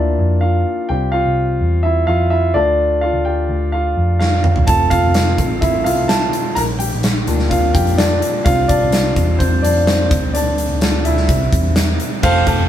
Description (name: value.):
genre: piano-driven pop.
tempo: 127 BPM.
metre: 4/4.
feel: straight.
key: unclear.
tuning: A4 = 440 Hz.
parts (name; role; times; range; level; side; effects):
warm grand piano; accompaniment; 0.0-12.7 s; G3 to Bb5; -17 LUFS; equal; none.
vintage muted picked electric bass; bass; 0.0-12.7 s; F1 to F2; -18 LUFS; equal; none.
huge arena drum kit; drums; 4.2-12.6 s; crash cymbal, hi-hat, kick drum, snare drum, toms; -17 LUFS; equal; none.
crunchy overdriven guitar; riff; 12.2-12.7 s; F3 to G4; -20 LUFS; right 4 dB; none.
room: wet studio reverb, RT60 0.6 s.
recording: band playing live in one room.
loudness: -13 LUFS.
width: side -11 dB against mid.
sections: 0.0-12.2 A section.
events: grand piano solo 0.0-12.2; drum fill 4.2-4.7.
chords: 0.0 Bb; 0.9 Csus4; 2.6 Dm; 4.7 F; 6.6 Bb; 8.5 Csus4; 10.1 Dm; 11.3 C.